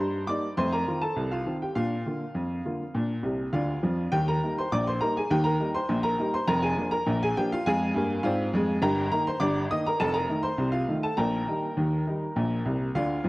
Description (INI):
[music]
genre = ragtime piano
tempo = 102 BPM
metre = 2/4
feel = straight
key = Eb major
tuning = A4 = 439 Hz
[part]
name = clear upright piano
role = solo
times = 0.0-13.3 s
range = F1 to Eb6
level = -24 LUFS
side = equal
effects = none
[sound]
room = wet spring reverb, RT60 2.5 s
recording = dark, warm production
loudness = -24 LUFS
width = side -20 dB against mid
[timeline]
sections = 0.0-4.1 A section; 4.1-13.3 B section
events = upright piano fill 3.2-4.1, 12.6-13.3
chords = 0.0 Eb/G; 0.6 F7; 1.8 Bb; 4.1 Eb; 6.5 Bb7/F; 8.8 Eb/G; 10.0 F7; 11.2 Eb/Bb; 12.4 Bb